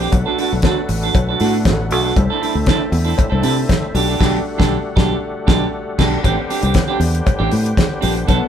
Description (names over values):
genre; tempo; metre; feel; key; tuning
disco; 118 BPM; 4/4; straight; A dorian; A4 = 440 Hz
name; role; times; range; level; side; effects
semi-hollow electric guitar; accompaniment; 0.0-8.4 s; B3 to A4; -20 LUFS; right 4 dB; none
overdriven tonewheel organ; sustained chords; 0.0-8.5 s; D3 to G4; -25 LUFS; left 1 dB; chorus vibrato
fingered electric bass; bass; 0.0-8.4 s; A1 to C3; -19 LUFS; left 1 dB; none
damped 70s drum kit; drums; 0.1-8.4 s; crash cymbal, hi-hat, kick drum, snare drum; -18 LUFS; equal; none
cowbell; percussion; 0.1-8.4 s; none; -28 LUFS; left 4 dB; none
room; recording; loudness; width
moderate studio reverb, RT60 1.0 s; band playing live in one room; -14 LUFS; side -9 dB against mid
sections
0.0-6.2 A section; 6.2-8.5 B section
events
band accent 4.2-6.2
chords
0.1 Bm7; 2.2 C69; 4.0 Gmaj9/B; 6.2 Am11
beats
| 0.13 0.64 1.15 1.66 | 2.17 2.68 3.19 3.70 | 4.21 4.72 5.23 5.74 | 6.25 6.76 7.27 7.78 | 8.29